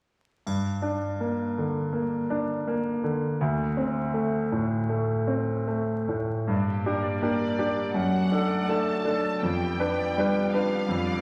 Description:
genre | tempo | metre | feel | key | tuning
classical, romantic movement for piano and orchestra | 82 BPM | 4/4 | rubato | G minor | A4 = 445 Hz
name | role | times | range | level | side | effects
bright grand piano | melody | 0.5-11.2 s | D2 to B4 | -27 LUFS | equal | none
triangle | percussion | 0.5-1.9 s | none | -49 LUFS | equal | none
rich symphonic viola section | accompaniment | 6.5-11.2 s | A3 to D5 | -39 LUFS | equal | none
rich symphonic violin section | melody | 7.2-11.2 s | D5 to A5 | -36 LUFS | equal | none
room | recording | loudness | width
wet concert hall reverb, RT60 2.3 s | vinyl crackle | -27 LUFS | mono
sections
0.5-6.5 A section; 6.5-11.2 B section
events
none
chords
0.5 Gm; 3.4 D5; 6.5 Gm; 7.9 D/F#; 9.4 G7/F

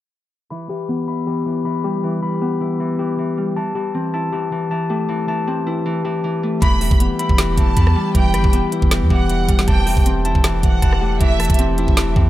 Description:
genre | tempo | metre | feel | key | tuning
hip hop, trap | 157 BPM | 4/4 | half-time | E minor | A4 = 442 Hz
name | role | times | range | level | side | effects
Celtic harp | accompaniment | 0.5-12.3 s | E3 to E4 | -24 LUFS | equal | low-pass filter
bell-like tine electric piano | arpeggios | 0.5-12.3 s | E3 to B5 | -21 LUFS | left 4 dB | low-pass filter, tape echo
warm studio violin section | second line | 6.6-11.6 s | E5 to B5 | -26 LUFS | right 3 dB | tape echo
chamber organ, principal chorus | sustained chords | 6.6-12.3 s | E3 to G4 | -31 LUFS | right 3 dB | none
long sustained 808-style bass | bass | 6.6-12.3 s | E1 to E2 | -19 LUFS | right 1 dB | none
trap drum kit | drums | 6.6-12.3 s | hi-hat, kick drum, rim click, snare drum | -16 LUFS | right 1 dB | none
room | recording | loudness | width
little or no reverb | none | -16 LUFS | side -14 dB against mid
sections
0.5-6.6 A section; 6.6-12.3 B section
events
filter sweep 0.5-6.6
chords
0.5 Em; 3.6 Am7/E

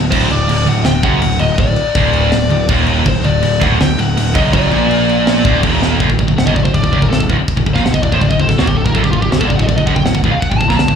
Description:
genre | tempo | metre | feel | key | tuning
heavy metal | 163 BPM | 4/4 | straight | D phrygian dominant | A4 = 443 Hz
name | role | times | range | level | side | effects
distorted electric guitar | riff | 0.0-11.0 s | D2 to Bb2 | -18 LUFS | right 12 dB | overdrive
scooped high-gain guitar | riff | 0.0-11.0 s | D2 to Bb2 | -19 LUFS | left 11 dB | distortion
fuzz picked electric bass | bass | 0.0-11.0 s | D1 to Bb1 | -17 LUFS | left 1 dB | overdrive
high-gain lead guitar | melody | 0.1-11.0 s | F4 to Bb5 | -19 LUFS | left 2 dB | distortion, slapback echo, tape echo
tight metal drum kit | drums | 0.1-11.0 s | crash cymbal, kick drum, snare drum | -17 LUFS | left 1 dB | none
room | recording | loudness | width
light reverb | live gig heard through the venue's PA, club reverb | -11 LUFS | side -7 dB against mid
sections
0.0-6.0 A section; 6.0-11.0 B section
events
half time 0.0-6.0; drum fill 5.8; lead electric guitar solo 6.0-11.0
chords
0.0 D; 6.0 N.C.

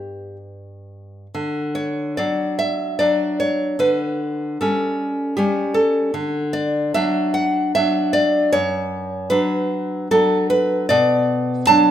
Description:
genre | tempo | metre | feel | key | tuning
romantic piece for solo classical guitar | 75 BPM | 3/4 | uneven beats, rubato | D major | A4 = 444 Hz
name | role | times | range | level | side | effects
nylon-string guitar | solo | 0.0-11.9 s | F#2 to A5 | -17 LUFS | equal | none
room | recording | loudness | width
moderate recital hall reverb, RT60 1.4 s | minimal, uncompressed stereo recording | -17 LUFS | side -10 dB against mid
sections
0.0-1.3 A section; 1.3-11.9 B section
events
none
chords
0.0 G; 1.3 D; 3.8 A7/D; 6.1 D; 8.5 D/F#; 10.9 Bm

